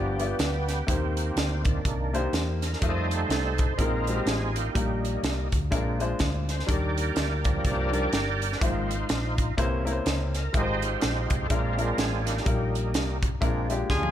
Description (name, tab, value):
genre	uptempo gospel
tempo	124 BPM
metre	4/4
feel	swing 59% on 8ths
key	Eb major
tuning	A4 = 435 Hz
part	warm upright piano	accompaniment	0.0-14.1 s	G2 to D5	-31 LUFS	left 3 dB	none
part	overdriven tonewheel organ	sustained chords	0.0-13.8 s	Eb3 to Eb5	-31 LUFS	right 3 dB	slow rotary speaker, chorus vibrato
part	hollow-body short-scale fingered electric bass	bass	0.0-14.1 s	G1 to F2	-29 LUFS	equal	none
part	crisp fusion drum kit	drums	0.2-14.1 s	hi-hat, kick drum, snare drum, toms	-28 LUFS	equal	none
part	warm horn section	melody	13.9-14.1 s	Ab3 to Ab4	-26 LUFS	left 1 dB	none
room	light reverb, small room reverb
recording	none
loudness	-24 LUFS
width	side -11 dB against mid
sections	0.0-14.1 A section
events	tonewheel organ solo 0.0-14.1; drum fill 13.9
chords	0.0 G7; 0.9 Cm7; 2.8 F7; 3.8 Bb9sus4; 4.8 Eb/Bb; 5.7 Bb7; 6.7 Ebmaj7; 8.6 Ab6; 9.6 C7b9; 10.5 Fm7/Ab; 11.5 Bb7; 12.5 Eb/Bb; 13.4 Bb7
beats	0.40 | 0.88 1.37 1.85 2.33 | 2.82 3.30 3.78 4.27 | 4.75 5.23 5.72 6.20 | 6.68 7.17 7.65 8.13 | 8.62 9.10 9.58 10.06 | 10.54 11.02 11.50 11.98 | 12.46 12.94 13.42 13.89